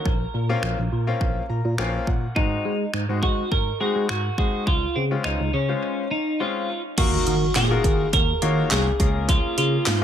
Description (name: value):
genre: dance-pop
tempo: 104 BPM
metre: 4/4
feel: straight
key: Eb dorian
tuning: A4 = 436 Hz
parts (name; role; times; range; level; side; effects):
- twelve-string electric guitar; melody; 0.0-10.0 s; C4 to Bb4; -25 LUFS; equal; dub echo
- bright concert grand piano; accompaniment; 0.0-10.0 s; Ab3 to Bb5; -29 LUFS; left 5 dB; sidechain pumping
- tine electric piano; bass; 0.1-10.0 s; Bb1 to Ab3; -24 LUFS; equal; phaser, sidechain pumping
- house drum kit; drums; 0.1-10.0 s; crash cymbal, finger snaps, handclaps, hi-hat, kick drum, snare drum; -24 LUFS; equal; dub echo
- impact; sound effects; 7.0-9.3 s; none; -31 LUFS; equal; none
room: light reverb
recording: echo-heavy mix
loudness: -20 LUFS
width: side -9 dB against mid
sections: 0.0-7.0 A section; 7.0-10.0 B section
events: grand piano fill 1.2-2.4; break 5.8-7.0; impact 7.0-9.3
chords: 0.1 Bbmadd9; 2.4 Ab7; 4.7 Dbmaj7; 7.0 Ebmadd9; 9.0 Db6